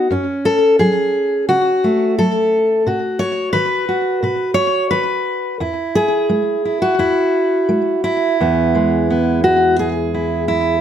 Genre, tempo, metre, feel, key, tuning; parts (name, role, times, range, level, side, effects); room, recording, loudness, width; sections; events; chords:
folk, solo fingerstyle acoustic guitar; 87 BPM; 4/4; straight; E major; A4 = 442 Hz
fingerpicked steel-string acoustic guitar; solo; 0.0-10.8 s; E2 to C#5; -14 LUFS; equal; slapback echo
light reverb; close, detailed microphones; -14 LUFS; side -9 dB against mid
0.0-8.4 A section; 8.4-10.8 B section
0.1 F#madd9; 2.9 B; 5.6 E